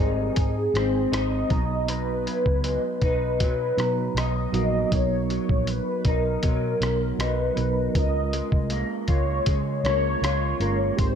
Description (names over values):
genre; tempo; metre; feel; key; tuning
indie pop, bedroom pop; 79 BPM; 4/4; straight; unclear; A4 = 440 Hz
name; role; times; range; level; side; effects
warm velvety synth lead; melody; 0.0-11.1 s; Ab4 to Eb5; -27 LUFS; left 1 dB; ensemble chorus, ping-pong delay
electric guitar through a small old amp; accompaniment; 0.0-11.2 s; B2 to F4; -31 LUFS; left 1 dB; ensemble chorus, warbly pitch drift
reed electric piano; accompaniment; 0.0-11.2 s; F#3 to A#5; -30 LUFS; right 5 dB; fast tremolo, cassette tape
vintage muted picked electric bass; bass; 0.0-11.2 s; G1 to Db3; -27 LUFS; equal; none
lo-fi sampler-style drum kit; drums; 0.4-11.2 s; hi-hat, kick drum, rim click; -26 LUFS; equal; none
room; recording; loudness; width
moderate plate reverb, RT60 1.6 s; dreamy mix soaked in reverb; -22 LUFS; side -8 dB against mid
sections
0.0-11.2 A section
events
none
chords
0.0 Abmaj7; 1.5 Bmaj7; 8.0 Db6